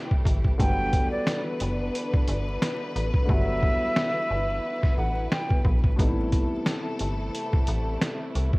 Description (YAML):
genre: hip hop, boom-bap hip-hop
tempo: 89 BPM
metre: 4/4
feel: swing 56% on 16ths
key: unclear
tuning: A4 = 440 Hz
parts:
  - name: dark concert grand piano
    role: accompaniment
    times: 0.0-8.6 s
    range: C3 to E4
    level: -33 LUFS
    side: left 1 dB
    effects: high-pass filter, low-pass filter
  - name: warm studio string section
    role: sustained chords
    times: 0.0-8.6 s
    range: C3 to B4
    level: -33 LUFS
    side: left 1 dB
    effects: high-pass filter, low-pass filter
  - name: trip hop sampler-style drum kit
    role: drums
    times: 0.1-8.6 s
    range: hi-hat, kick drum, snare drum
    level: -24 LUFS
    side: equal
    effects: vintage 12-bit sampler grit, cassette tape
  - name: metallic FM bass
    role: bass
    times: 0.3-8.5 s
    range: F#1 to C2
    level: -28 LUFS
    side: equal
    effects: none
  - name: breathy concert flute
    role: melody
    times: 0.6-5.6 s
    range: D5 to G5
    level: -28 LUFS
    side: right 1 dB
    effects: high-pass filter, low-pass filter
room: light reverb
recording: home recording on cassette, vinyl crackle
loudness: -23 LUFS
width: side -24 dB against mid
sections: 0.0-8.6 A section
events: break 0.0-0.6; hi-hats muted 3.3-6.0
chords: 0.0 Am7; 0.6 Gmaj7; 6.0 Am7